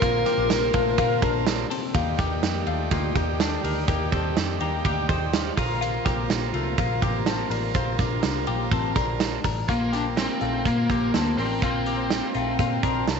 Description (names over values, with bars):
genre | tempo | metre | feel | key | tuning
jangly indie pop | 124 BPM | 4/4 | straight | Bb major | A4 = 443 Hz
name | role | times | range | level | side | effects
lead guitar through a small cranked amp | melody | 0.0-1.4, 9.7-13.0 s | Bb3 to Bb4 | -25 LUFS | left 2 dB | overdrive
combo organ | accompaniment | 0.0-13.2 s | C4 to Bb5 | -31 LUFS | right 14 dB | none
string machine, cellos | sustained chords | 0.0-9.7 s | C3 to D5 | -36 LUFS | left 1 dB | ensemble chorus
twelve-string electric guitar | arpeggios | 0.0-13.2 s | A3 to C5 | -29 LUFS | left 15 dB | phaser, tape echo
vintage muted picked electric bass | bass | 0.0-13.2 s | A1 to Bb2 | -29 LUFS | left 1 dB | none
big rock drum kit | drums | 0.0-13.2 s | hi-hat, kick drum, ride cymbal, snare drum | -27 LUFS | right 4 dB | none
tambourine | percussion | 0.0-9.6 s | none | -47 LUFS | right 16 dB | none
room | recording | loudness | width
small room ambience | 1960s-style stereo with parts hard left and right, nothing above 7.9 kHz | -22 LUFS | side -6 dB against mid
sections
0.0-1.9 A section; 1.9-9.7 B section; 9.7-13.2 C section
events
transistor combo organ fill 4.4-5.8, 12.6-13.2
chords
0.0 Bbsus2; 1.9 Ebmaj7; 5.6 Bbsus2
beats
| 0.02 0.50 0.98 1.46 | 1.95 2.43 2.91 3.40 | 3.88 4.36 4.85 5.33 | 5.81 6.30 6.78 7.26 | 7.75 8.23 8.72 9.20 | 9.68 10.17 10.65 11.14 | 11.62 12.11 12.59 13.07